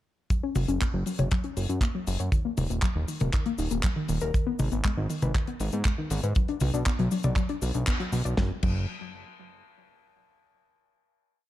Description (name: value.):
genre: italo disco.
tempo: 119 BPM.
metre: 4/4.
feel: straight.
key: F# major.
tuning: A4 = 441 Hz.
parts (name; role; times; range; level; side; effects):
warbly dusty pluck; arpeggios; 0.3-8.9 s; D#3 to D5; -31 LUFS; left 3 dB; chorus, ping-pong delay.
damped 70s drum kit; drums; 0.3-8.7 s; cabasa, crash cymbal, handclaps, hi-hat, snare drum, toms; -32 LUFS; equal; none.
kick drum; drums; 0.3-8.7 s; none; -26 LUFS; equal; none.
fat analog bass; bass; 0.6-8.9 s; D#1 to G#2; -30 LUFS; equal; none.
room: light reverb.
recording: dark, warm production.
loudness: -25 LUFS.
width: side -14 dB against mid.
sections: 0.3-8.4 chorus; 8.4-10.4 final chord.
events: band accent 7.9.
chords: 0.3 F#5; 2.3 D#5; 4.3 G#m; 6.4 Bm; 8.4 N.C..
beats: | 0.31 0.81 1.32 1.82 | 2.33 2.83 3.33 3.84 | 4.34 4.85 5.35 5.85 | 6.36 6.86 7.37 7.87 | 8.38.